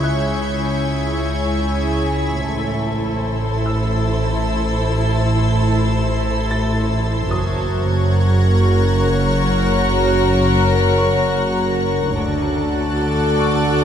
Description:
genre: cinematic, suspense film score.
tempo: 74 BPM.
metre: 3/4.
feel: straight.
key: unclear.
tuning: A4 = 440 Hz.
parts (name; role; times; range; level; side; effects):
warm symphonic violin section; melody; 0.0-13.8 s; C5 to D5; -29 LUFS; left 4 dB; none.
warm symphonic violin section; second line; 0.0-13.8 s; G#4 to A#4; -24 LUFS; left 4 dB; none.
warm studio viola section; accompaniment; 0.0-13.8 s; E4 to F#4; -25 LUFS; right 2 dB; none.
soft additive organ-like pad; sustained chords; 0.0-13.8 s; E4 to A#5; -26 LUFS; equal; ensemble chorus, built-in reverb.
dark symphonic double bass section; bass; 0.0-13.8 s; F#1 to D2; -22 LUFS; right 2 dB; none.
warm studio cello section; bass; 0.0-13.8 s; D2 to C#3; -22 LUFS; equal; none.
analog drone; drone; 0.0-13.8 s; F#1 to D2; -24 LUFS; equal; chorus.
bright concert grand piano; texture; 0.0-13.8 s; D#5 to A6; -32 LUFS; left 2 dB; none.
warm symphonic violin section; texture; 0.0-2.0, 7.3-13.8 s; F#5 to G#6; -32 LUFS; left 3 dB; none.
room: moderate recital hall reverb, RT60 1.6 s.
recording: none.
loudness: -16 LUFS.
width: side -9 dB against mid.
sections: 0.0-13.8 A section.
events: none.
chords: 0.0 C#m; 2.5 Am; 7.3 F#; 12.2 D.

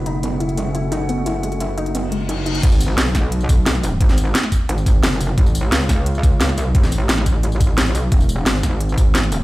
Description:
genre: dark technical drum and bass.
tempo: 175 BPM.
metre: 4/4.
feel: straight.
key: G# phrygian.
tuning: A4 = 439 Hz.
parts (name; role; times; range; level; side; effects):
metallic inharmonic drone; sustained chords; 0.0-2.6 s; C#3 to F#4; -28 LUFS; left 1 dB; chorus, built-in reverb, sidechain pumping.
metallic wobble bass; bass; 0.0-9.4 s; E1 to C#2; -19 LUFS; equal; chorus, tube saturation, sidechain pumping.
warbly dusty pluck; arpeggios; 0.1-2.5 s; G#3 to E4; -25 LUFS; left 1 dB; chorus, sidechain pumping, digital delay.
drum and bass drum kit; drums; 0.1-9.4 s; crash cymbal, hi-hat, snare drum, tambourine; -21 LUFS; equal; none.
reverse cymbal and impact; sound effects; 2.1-4.0 s; none; -30 LUFS; left 1 dB; none.
electronic kick drum; drums; 2.6-9.0 s; none; -15 LUFS; equal; none.
room: little or no reverb.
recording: played on a big sound system in a bare room, large studio reverb.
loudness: -15 LUFS.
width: side -18 dB against mid.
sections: 0.0-2.6 A section; 2.6-9.4 B section.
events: reverse cymbal 2.1-2.6; drop 2.6-9.4; impact 2.6-4.0.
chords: 0.0 F#m; 2.6 G#m; 5.4 A; 8.1 E.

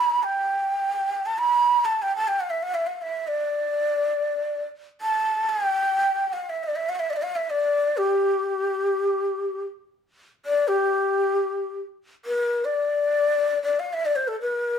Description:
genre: Arabic maqam ensemble.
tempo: free time.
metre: none.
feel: none.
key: G maqam rast.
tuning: A4 = 440 Hz.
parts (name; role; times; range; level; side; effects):
breathy ney; solo; 0.0-14.8 s; G4 to B5-41c; -22 LUFS; equal; none.
room: wet studio reverb, RT60 0.7 s.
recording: band playing live in one room.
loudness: -22 LUFS.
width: side -7 dB against mid.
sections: 0.0-11.9 A section; 11.9-14.8 A section.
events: none.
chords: none.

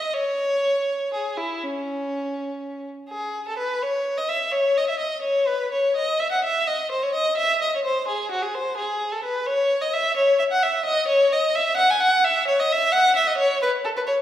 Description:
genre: classical, baroque-style suite movement for unaccompanied violin.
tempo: 78-89 BPM (dotted quarters).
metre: 12/8.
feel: rubato.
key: C# minor.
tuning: A4 = 442 Hz.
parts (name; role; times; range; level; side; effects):
rich violin; solo; 0.0-14.1 s; C#4 to G#5; -20 LUFS; equal; none.
room: wet recital hall reverb, RT60 1.5 s.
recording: heard from further back in the room.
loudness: -20 LUFS.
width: side -11 dB against mid.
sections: 0.0-3.1 A section; 3.1-14.2 B section.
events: none.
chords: none.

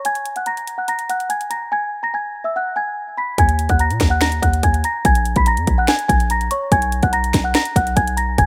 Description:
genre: hip hop, trap.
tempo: 144 BPM.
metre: 4/4.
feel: half-time.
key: Eb minor.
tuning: A4 = 439 Hz.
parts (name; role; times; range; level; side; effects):
small celesta; melody; 0.0-8.5 s; Db5 to B6; -22 LUFS; equal; low-pass filter.
trap drum kit; drums; 0.0-8.5 s; finger snaps, hi-hat, kick drum, snare drum; -22 LUFS; equal; none.
hard-hitting 808-style bass; bass; 3.4-8.5 s; E1 to Bb2; -22 LUFS; equal; none.
room: little or no reverb.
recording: rough home demo mix.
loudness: -18 LUFS.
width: mono.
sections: 0.0-3.4 A section; 3.4-8.5 B section.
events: filter sweep on celesta 0.0-3.4.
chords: 0.1 Gbadd9; 1.7 Eadd9 (rootless); 3.4 Ebm; 5.0 Bbm7; 6.7 B5.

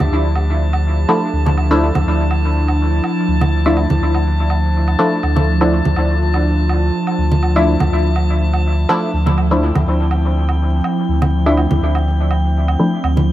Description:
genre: dub techno.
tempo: 123 BPM.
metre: 4/4.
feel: swing 54% on 16ths.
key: D minor.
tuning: A4 = 444 Hz.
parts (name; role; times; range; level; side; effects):
warbly tape-like pad; sustained chords; 0.0-13.3 s; F3 to G4; -21 LUFS; right 1 dB; chorus, built-in reverb, phaser.
warm sub bass; bass; 0.0-13.3 s; D2; -16 LUFS; equal; none.
congas and woodblock; percussion; 0.0-13.3 s; none; -22 LUFS; right 2 dB; dub echo.
drifting glass-harmonics texture; texture; 0.0-13.3 s; G5 to A5; -27 LUFS; left 2 dB; chorus, built-in reverb.
filtered dub chord stab; stabs; 1.1-13.0 s; F3 to E4; -20 LUFS; left 1 dB; chorus, phaser, dub echo.
room: light reverb.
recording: vinyl crackle.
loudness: -13 LUFS.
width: side -14 dB against mid.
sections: 0.0-13.3 A section.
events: none.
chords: 0.0 Dmadd9.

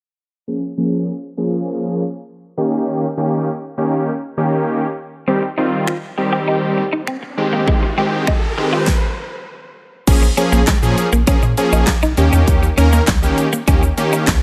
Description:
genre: dance-pop.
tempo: 100 BPM.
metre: 4/4.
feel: straight.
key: Bb dorian.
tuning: A4 = 440 Hz.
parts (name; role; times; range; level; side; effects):
big bright polysynth; accompaniment; 0.5-14.3 s; Eb3 to Bb4; -20 LUFS; equal; chorus, sidechain pumping, low-pass filter.
clean electric guitar; riff; 5.3-14.3 s; G3 to G4; -24 LUFS; equal; analog chorus, low-pass filter.
riser; sound effects; 6.9-8.9 s; none; -30 LUFS; equal; none.
pop drum kit; drums; 5.9-14.4 s; crash cymbal, finger snaps, handclaps, hi-hat, kick drum, shaker, snare drum; -19 LUFS; equal; none.
round analog bass; bass; 10.1-14.4 s; Bb1 to Bb2; -18 LUFS; equal; sidechain pumping.
room: light reverb.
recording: none.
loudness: -17 LUFS.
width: mono.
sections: 0.5-10.1 A section; 10.1-14.4 B section.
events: filter sweep 0.5-10.1; riser 6.9-10.1; stop 8.9-10.1.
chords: 0.5 Bbm7; 2.6 Eb7; 5.3 Cm; 7.4 Abmaj7; 10.1 Bbm7; 12.2 Eb7.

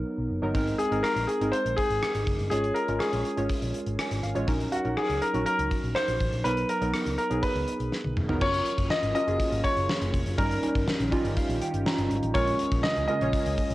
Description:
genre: 1980s-style pop.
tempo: 122 BPM.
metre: 4/4.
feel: straight.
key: unclear.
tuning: A4 = 440 Hz.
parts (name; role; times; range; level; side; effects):
warm analog keys; accompaniment; 0.0-13.7 s; Gb3 to Bb5; -30 LUFS; right 1 dB; chorus, cassette tape.
vintage muted picked electric bass; bass; 0.0-13.7 s; Fb1 to Db2; -31 LUFS; equal; none.
gated 80s drum kit; drums; 0.5-13.7 s; crash cymbal, hi-hat, kick drum, rim click, snare drum, toms; -30 LUFS; equal; cassette tape.
clear baby grand piano; melody; 0.8-13.7 s; Gb4 to Eb5; -28 LUFS; left 1 dB; cassette tape, plate reverb.
phased analog pad; sustained chords; 8.7-13.7 s; Db3 to Ab4; -36 LUFS; left 1 dB; phaser, chorus, cassette tape.
room: wet booth ambience, RT60 0.3 s.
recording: home recording on cassette.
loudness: -24 LUFS.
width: side -16 dB against mid.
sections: 0.0-8.4 A section; 8.4-13.7 B section.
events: synth keys fill 3.7-4.5, 10.9-12.4; drum fill 7.9-8.4.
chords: 0.0 Cbmaj7; 0.5 Abadd9; 2.5 Db/Ab; 4.5 Gb6/Bb; 6.4 Cbmaj7; 8.4 Gbmaj7; 10.4 Eb7/G; 12.4 Bbm7.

